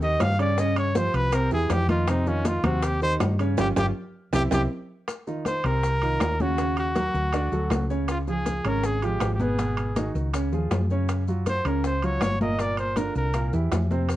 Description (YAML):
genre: Afro-Cuban jazz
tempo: 160 BPM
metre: 4/4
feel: straight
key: F minor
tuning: A4 = 440 Hz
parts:
  - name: clear trumpet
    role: melody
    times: 0.0-13.5 s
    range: Db4 to F5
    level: -27 LUFS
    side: equal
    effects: none
  - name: warm concert grand piano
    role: accompaniment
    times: 0.0-14.2 s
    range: Bb2 to D5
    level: -29 LUFS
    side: right 2 dB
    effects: none
  - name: hollow-body short-scale fingered electric bass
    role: bass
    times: 0.0-14.2 s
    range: G1 to G2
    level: -26 LUFS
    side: equal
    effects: none
  - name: bongos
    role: percussion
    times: 0.0-14.2 s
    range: none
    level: -33 LUFS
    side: left 4 dB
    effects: none
  - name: congas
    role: percussion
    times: 0.0-14.2 s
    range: none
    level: -32 LUFS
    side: left 1 dB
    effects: none
  - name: maracas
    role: percussion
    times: 0.0-14.2 s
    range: none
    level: -46 LUFS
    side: left 7 dB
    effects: none
  - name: timbales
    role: percussion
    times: 0.2-14.2 s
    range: none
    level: -32 LUFS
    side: right 4 dB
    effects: none
room: light reverb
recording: worn, warbling old tape, cassette tape, warbly pitch drift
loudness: -22 LUFS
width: side -14 dB against mid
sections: 0.0-5.1 A section; 5.1-14.2 B section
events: trumpet solo 0.0-5.1; drum fill 3.6-5.1; band accent 3.6-5.1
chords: 0.0 Eb; 0.6 Eb13; 1.3 C; 2.1 F5; 2.8 Eb6; 3.6 Fsus2/G; 4.3 C; 5.1 F5; 6.6 Ebm7; 7.3 D; 8.1 Db; 9.6 Abm7; 10.3 Dbadd9; 11.1 Gbmaj7; 12.6 Gm7; 13.3 C7